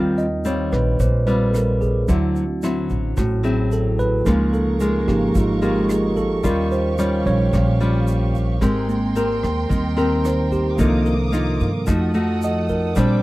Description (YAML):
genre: bossa nova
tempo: 110 BPM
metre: 4/4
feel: straight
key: unclear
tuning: A4 = 440 Hz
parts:
  - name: nylon-string guitar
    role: accompaniment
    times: 0.0-13.2 s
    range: Ab2 to Bb4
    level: -22 LUFS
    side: left 1 dB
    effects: none
  - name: tine electric piano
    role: accompaniment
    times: 0.0-13.2 s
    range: Eb3 to Eb5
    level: -22 LUFS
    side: right 2 dB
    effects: none
  - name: upright bass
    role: bass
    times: 0.0-13.2 s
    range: Ab1 to G2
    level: -22 LUFS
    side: equal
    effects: none
  - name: vintage brush drum kit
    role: drums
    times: 0.2-13.1 s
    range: hi-hat, kick drum, rim click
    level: -26 LUFS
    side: equal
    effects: none
  - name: tube shaker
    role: percussion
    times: 0.2-13.2 s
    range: none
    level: -43 LUFS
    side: right 7 dB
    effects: none
  - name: warm studio string section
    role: sustained chords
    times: 4.3-13.2 s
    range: G4 to Eb6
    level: -31 LUFS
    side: right 4 dB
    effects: none
room: little or no reverb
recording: dry, close 1970s-style studio recording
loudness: -17 LUFS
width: side -18 dB against mid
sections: 0.0-13.2 A section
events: tine electric piano solo 0.0-13.2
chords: 0.0 Eb69; 2.1 D9; 4.3 Db6; 6.4 Eb9; 8.6 Abmaj9; 10.8 Cm11; 11.9 F7b9